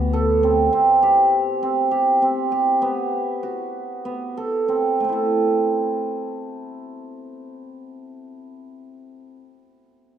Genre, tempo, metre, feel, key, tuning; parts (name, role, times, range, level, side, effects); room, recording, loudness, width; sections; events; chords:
contemporary instrumental, contemporary; 186-204 BPM (eighths); 7/8; straight; A dorian; A4 = 442 Hz
cimbalom; arpeggios; 0.0-9.4 s; A3 to A4; -19 LUFS; right 2 dB
upright bass; bass; 0.0-0.7 s; D2; -23 LUFS; left 3 dB
light reverb; close, detailed microphones; -17 LUFS; side -9 dB against mid
0.0-5.0 A section; 5.0-9.5 B section
slowing down 0.7-5.0
0.0 D6; 0.7 C5; 2.8 B5; 5.0 Am